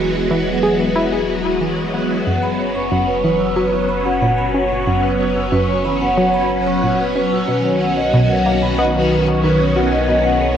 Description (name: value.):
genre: ambient, sequencer-driven space music.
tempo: 92 BPM.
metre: 4/4.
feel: straight.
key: unclear.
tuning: A4 = 439 Hz.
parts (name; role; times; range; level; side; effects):
phased string machine; sustained chords; 0.0-10.6 s; D#3 to G#4; -18 LUFS; equal; ensemble chorus, phaser.
warm sub bass; bass; 0.0-10.6 s; E1 to B1; -27 LUFS; equal; none.
analog pluck; riff; 0.3-10.3 s; F#2 to G#4; -21 LUFS; equal; chorus, ping-pong delay.
vibraphone with medium hard mallets; arpeggios; 2.3-10.5 s; B4 to E6; -19 LUFS; equal; auto-pan, ping-pong delay.
room: wet lush hall reverb, RT60 2.8 s.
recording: worn, warbling old tape, cassette tape, warbly pitch drift.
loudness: -14 LUFS.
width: side -9 dB against mid.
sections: 0.0-10.6 A section.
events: none.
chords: 0.0 Eadd9; 2.3 F#sus4; 7.5 Badd9.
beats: 0.31 0.96 1.61 | 2.26 2.91 3.57 4.22 | 4.87 5.52 6.17 6.83 | 7.48 8.13 8.78 9.44 | 10.09.